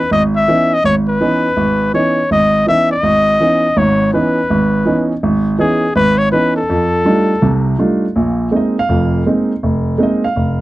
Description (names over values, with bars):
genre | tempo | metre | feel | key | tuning
jazz | 164 BPM | 4/4 | swing 66% on 8ths | unclear | A4 = 441 Hz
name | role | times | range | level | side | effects
clear trumpet | melody | 0.0-7.7 s | G#4 to E5 | -14 LUFS | left 2 dB | none
warm grand piano | accompaniment | 0.1-10.6 s | F1 to F5 | -14 LUFS | right 1 dB | none
room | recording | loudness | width
light reverb | dry, close 1970s-style studio recording | -12 LUFS | side -16 dB against mid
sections
0.0-8.2 A section; 8.2-10.6 B section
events
none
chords
0.0 C#m9; 6.7 F13; 8.2 Bb9sus4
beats
0.11 0.47 | 0.84 1.20 1.57 1.94 | 2.30 2.67 3.03 3.40 | 3.77 4.13 4.50 4.86 | 5.23 5.60 5.96 6.33 | 6.69 7.06 7.43 7.79 | 8.16 8.52 8.89 9.26 | 9.62 9.99 10.35